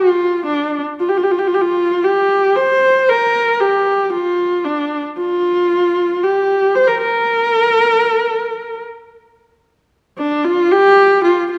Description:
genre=mongolian traditional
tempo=114 BPM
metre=4/4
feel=straight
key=unclear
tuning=A4 = 441 Hz
part: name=rich horsehead fiddle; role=solo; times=0.0-11.6 s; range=D4 to C5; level=-15 LUFS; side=equal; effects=none
room=moderate recital hall reverb, RT60 1.6 s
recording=none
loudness=-15 LUFS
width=mono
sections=0.0-9.4 A section; 9.4-11.6 B section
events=none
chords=none

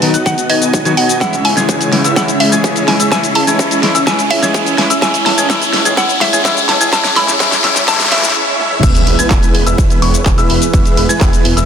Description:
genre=EDM, festival progressive house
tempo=126 BPM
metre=4/4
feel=straight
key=E major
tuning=A4 = 444 Hz
part: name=mallet-like synth pluck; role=melody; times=0.0-8.3 s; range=D#5 to B5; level=-18 LUFS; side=equal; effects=chorus, tape echo
part: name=clean electric guitar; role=accompaniment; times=0.0-8.2 s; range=D#3 to G#4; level=-20 LUFS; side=left 4 dB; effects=sidechain pumping, tape echo
part: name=lush unison pad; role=sustained chords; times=0.0-11.7 s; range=C#3 to B4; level=-21 LUFS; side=equal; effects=chorus, sidechain pumping
part: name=bright grand piano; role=arpeggios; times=0.0-11.7 s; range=C#6 to A6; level=-20 LUFS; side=left 1 dB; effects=sidechain pumping, tape echo
part: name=dense compressed supersaw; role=riff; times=0.0-11.7 s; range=G#3 to A5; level=-18 LUFS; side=right 1 dB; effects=vintage 12-bit sampler grit, sidechain pumping, tape echo
part: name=wide detuned saw bass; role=bass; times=0.0-11.6 s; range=E1 to C#2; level=-21 LUFS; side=equal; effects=chorus, sidechain pumping, high-pass filter
part: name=pop drum kit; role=drums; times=0.0-11.7 s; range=cabasa, crash cymbal, handclaps, hi-hat, snare drum, toms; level=-16 LUFS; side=equal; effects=studio reverb
part: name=riser and sub drop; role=sound effects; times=0.0-10.7 s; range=none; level=-19 LUFS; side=left 2 dB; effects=none
part: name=electronic kick drum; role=drums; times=0.3-11.3 s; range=none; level=-14 LUFS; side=equal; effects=overdrive, high-pass filter on kick, studio reverb
room=moderate huge ambient reverb, RT60 6.6 s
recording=dense, heavily limited modern master, high-pass filter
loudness=-10 LUFS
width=side -8 dB against mid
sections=0.0-8.8 A section; 8.8-11.7 B section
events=build-up 0.0-8.8; riser 0.0-8.4; filter sweep on supersaw synth 0.0-8.8; filter sweep on analog synth pad 0.0-8.8; filter sweep 0.0-8.8; drum fill 1.2-8.4, 8.6; break 8.4-8.8; drop 8.8-11.7; impact 8.8-10.7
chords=0.0 B; 1.2 C#m; 5.0 A; 8.8 E

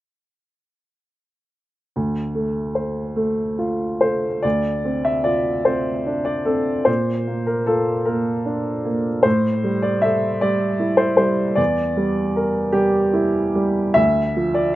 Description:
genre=neoclassical minimalist piano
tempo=46-52 BPM (dotted quarters)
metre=6/8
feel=rubato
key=D minor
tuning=A4 = 440 Hz
part: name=clear baby grand piano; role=solo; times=2.0-14.8 s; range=D2 to E5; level=-18 LUFS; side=equal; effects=none
room=light reverb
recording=recorded outdoors, with no room sound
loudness=-18 LUFS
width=side -15 dB against mid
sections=2.0-4.4 A section; 4.4-14.8 B section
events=none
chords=2.0 Dm7; 6.9 Bb; 9.2 A5; 11.6 Em7b5; 14.0 Dm

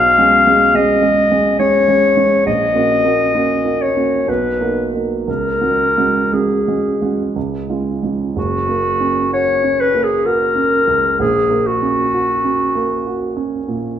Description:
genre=classical, romantic duo for clarinet and grand piano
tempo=56-71 BPM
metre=3/4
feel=rubato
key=F# major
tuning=A4 = 436 Hz
part: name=warm clarinet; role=melody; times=0.0-13.5 s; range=F#4 to E#5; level=-14 LUFS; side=left 2 dB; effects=none
part: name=warm grand piano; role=accompaniment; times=0.0-14.0 s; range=F#1 to G#4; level=-18 LUFS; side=right 4 dB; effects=none
room=wet recital hall reverb, RT60 1.8 s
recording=minimal, uncompressed stereo recording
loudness=-13 LUFS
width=side -9 dB against mid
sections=0.0-8.4 A section; 8.4-14.0 B section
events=none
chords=0.0 C#7/B; 2.5 F#/A#; 4.3 Bmaj7; 5.3 C#sus4; 7.4 C#; 8.4 F#; 11.2 F#/A#

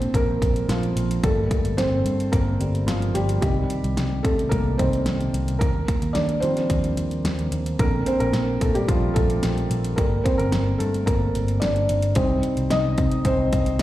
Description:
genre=piano-driven pop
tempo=110 BPM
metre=4/4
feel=straight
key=unclear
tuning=A4 = 441 Hz
part: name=felt-muted upright piano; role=accompaniment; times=0.0-13.8 s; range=D3 to Eb5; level=-24 LUFS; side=equal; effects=slapback echo
part: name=vintage muted picked electric bass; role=bass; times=0.0-13.8 s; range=G1 to Eb3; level=-24 LUFS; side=equal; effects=none
part: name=pop drum kit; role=drums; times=0.0-13.8 s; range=hi-hat, kick drum, snare drum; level=-25 LUFS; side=equal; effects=overdrive
room=light reverb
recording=live gig heard through the venue's PA, recital hall reverb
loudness=-20 LUFS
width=side -14 dB against mid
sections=0.0-13.8 A section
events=felt piano solo 0.0-13.8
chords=0.0 Bbmaj7; 1.2 Gmadd9; 3.4 Cm; 5.6 Ebmaj7; 7.8 Bbmaj7; 10.0 Gmadd9; 12.2 Cm

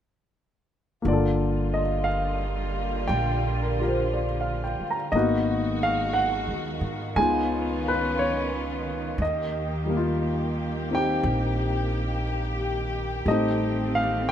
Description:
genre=jazz ballad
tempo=59 BPM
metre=4/4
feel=swing 69% on 8ths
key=G minor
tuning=A4 = 440 Hz
part: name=warm grand piano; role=accompaniment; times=1.0-14.3 s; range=D3 to Bb5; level=-26 LUFS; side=left 1 dB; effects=none
part: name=warm studio string section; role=sustained chords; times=1.1-14.3 s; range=D3 to G4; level=-31 LUFS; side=right 1 dB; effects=none
part: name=upright bass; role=bass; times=1.1-14.3 s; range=G1 to Ab2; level=-29 LUFS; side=right 1 dB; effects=none
room=light reverb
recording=none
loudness=-23 LUFS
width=side -10 dB against mid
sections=1.1-14.3 A section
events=none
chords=1.1 Gm7; 5.1 Abm7; 7.2 C#9; 9.2 Eb; 13.3 Am7b5

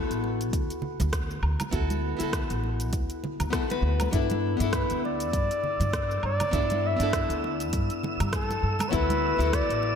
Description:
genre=sunset chillout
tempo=100 BPM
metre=4/4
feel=swing 57% on 16ths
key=D major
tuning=A4 = 440 Hz
part: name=nylon-string guitar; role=accompaniment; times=0.0-10.0 s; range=B3 to B4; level=-30 LUFS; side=moving between left 6 dB and right 1 dB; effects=auto-pan, tape echo
part: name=upright bass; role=bass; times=0.1-10.0 s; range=A1 to G2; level=-29 LUFS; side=equal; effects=none
part: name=deep house drum kit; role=drums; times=0.1-9.8 s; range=hi-hat, rim click, shaker, woodblock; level=-35 LUFS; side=right 1 dB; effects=none
part: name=congas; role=percussion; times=0.2-10.0 s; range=none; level=-37 LUFS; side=right 4 dB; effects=none
part: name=electronic kick drum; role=drums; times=0.5-9.7 s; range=none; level=-30 LUFS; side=equal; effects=none
part: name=wind-like tuned noise texture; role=texture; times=4.9-10.0 s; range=E6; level=-38 LUFS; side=right 3 dB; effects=built-in reverb, ensemble chorus
part: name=mellow flugelhorn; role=melody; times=4.7-10.0 s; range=A4 to E5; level=-29 LUFS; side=equal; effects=diffuse ambient delay
room=moderate lush hall reverb, RT60 1.9 s, small room ambience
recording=dreamy mix soaked in reverb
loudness=-24 LUFS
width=side -7 dB against mid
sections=0.0-10.0 A section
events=none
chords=0.0 D6; 4.1 G6; 8.9 D6

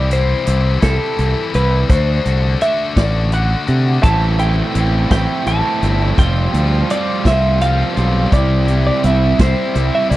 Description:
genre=indie rock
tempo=56 BPM (dotted quarters)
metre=6/8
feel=straight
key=unclear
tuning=A4 = 440 Hz
part: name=twelve-string electric guitar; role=melody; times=0.0-10.2 s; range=A4 to A5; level=-20 LUFS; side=equal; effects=slapback echo
part: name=high-gain distorted guitar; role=riff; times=0.0-10.2 s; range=A2 to F#4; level=-22 LUFS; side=left 5 dB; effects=distortion
part: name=growling fingered electric bass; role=bass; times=0.0-10.2 s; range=F1 to C3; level=-16 LUFS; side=equal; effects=overdrive
part: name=vintage drum kit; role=drums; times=0.1-10.2 s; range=hi-hat, kick drum, snare drum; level=-16 LUFS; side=equal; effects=none
part: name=overdriven electric guitar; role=riff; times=4.0-10.2 s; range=A2 to F4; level=-21 LUFS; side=right 5 dB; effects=lush chorus, slapback echo
room=little or no reverb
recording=dry, close 1970s-style studio recording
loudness=-13 LUFS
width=side -16 dB against mid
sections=0.0-10.2 A section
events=none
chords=0.0 C; 1.9 D; 4.0 Am; 6.2 Fsus2; 8.3 C

